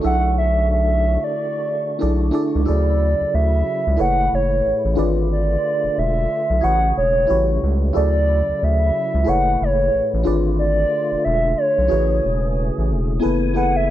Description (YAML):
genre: R&B, neo-soul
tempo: 91 BPM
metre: 4/4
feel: swing 58% on 16ths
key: B dorian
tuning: A4 = 440 Hz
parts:
  - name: mellow FM electric piano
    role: accompaniment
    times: 0.0-13.9 s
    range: B3 to E5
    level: -24 LUFS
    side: equal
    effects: chorus, phaser
  - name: percussive tonewheel organ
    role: sustained chords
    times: 0.0-13.9 s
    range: A2 to G#5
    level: -28 LUFS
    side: left 1 dB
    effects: overdrive, chorus vibrato, slow rotary speaker
  - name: round analog bass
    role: bass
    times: 0.0-13.9 s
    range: E1 to D2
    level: -20 LUFS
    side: equal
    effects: none
  - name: hollow clarinet-like synth lead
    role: melody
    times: 0.1-13.9 s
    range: C#5 to F#5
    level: -20 LUFS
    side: right 1 dB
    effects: chorus
room: light reverb, digital ambience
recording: none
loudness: -16 LUFS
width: side -13 dB against mid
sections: 0.0-2.7 A section; 2.7-13.2 B section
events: none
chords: 0.0 Bm11; 2.7 Dmaj9; 4.0 F#m9; 5.0 E7b9/G#; 6.6 Amaj7; 7.3 A7; 7.9 Dmaj9; 9.3 F#m9; 10.2 E7b9/G#; 11.9 F#m11